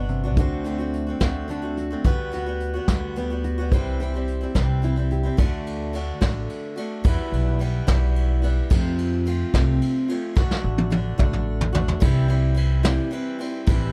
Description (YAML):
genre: indie folk with a building arrangement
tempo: 72 BPM (dotted quarters)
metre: 6/8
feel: straight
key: unclear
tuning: A4 = 439 Hz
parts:
  - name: fingerpicked steel-string acoustic guitar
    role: accompaniment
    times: 0.0-5.4 s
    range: C3 to C5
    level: -31 LUFS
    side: equal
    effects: none
  - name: picked steel-string acoustic guitar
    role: accompaniment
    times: 0.0-13.9 s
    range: E2 to F#4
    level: -31 LUFS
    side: equal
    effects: none
  - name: upright bass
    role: bass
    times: 0.0-13.9 s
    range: G1 to F2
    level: -26 LUFS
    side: equal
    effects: none
  - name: vintage brush drum kit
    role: drums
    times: 0.1-13.8 s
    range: hi-hat, kick drum, ride cymbal, snare drum, toms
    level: -25 LUFS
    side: equal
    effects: none
room: little or no reverb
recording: none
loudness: -23 LUFS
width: mono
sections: 0.0-5.4 A section; 5.4-12.0 B section; 12.0-13.9 C section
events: drum fill 10.4-12.0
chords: 0.4 D7; 2.0 Gmaj7/D; 3.7 C; 5.4 D; 7.0 Em; 8.7 F; 10.4 D; 12.0 C